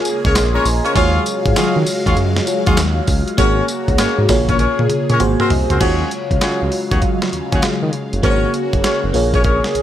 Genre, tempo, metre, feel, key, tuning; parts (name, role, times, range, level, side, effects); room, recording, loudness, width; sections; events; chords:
R&B, new jack swing; 99 BPM; 4/4; swing 65% on 16ths; Eb dorian; A4 = 442 Hz
FM electric piano with soft pad layer; accompaniment; 0.0-9.8 s; Ab3 to C6; -20 LUFS; equal; chorus, phaser
phased analog pad; sustained chords; 0.0-9.8 s; C3 to F5; -22 LUFS; equal; phaser, chorus
dusty soul sampler-style drum kit; drums; 0.0-9.8 s; crash cymbal, hi-hat, kick drum, snare drum, tambourine, toms; -19 LUFS; equal; gated reverb
warm horn section; stabs; 0.2-9.6 s; C4 to F5; -21 LUFS; left 2 dB
smooth synth bass; bass; 0.2-9.8 s; Gb1 to Eb3; -19 LUFS; equal
digital ambience; -14 LUFS; side -11 dB against mid
0.0-5.8 A section; 5.8-9.8 B section
drum fill 4.6-5.8; FM electric piano fill 4.9-5.8
0.0 Bbm7; 1.0 Ebm11; 3.4 Ab9sus4; 4.3 Bbm7; 5.2 Ab9; 5.8 Ebm11; 8.2 Ab9sus4; 9.1 Bbm7